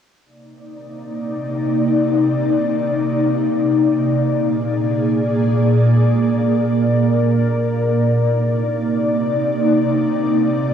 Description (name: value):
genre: hip hop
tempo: free time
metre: none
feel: none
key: C minor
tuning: A4 = 440 Hz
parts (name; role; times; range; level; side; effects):
- ethereal airy pad; sustained chords; 1.0-10.7 s; Bb2 to D5; -15 LUFS; equal; ensemble chorus, built-in reverb, cassette tape
room: wet booth ambience, RT60 0.2 s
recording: home recording on cassette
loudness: -15 LUFS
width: side -8 dB against mid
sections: 0.3-10.7 A section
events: none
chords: 0.3 Cm9; 4.2 Bb7; 8.1 Cm9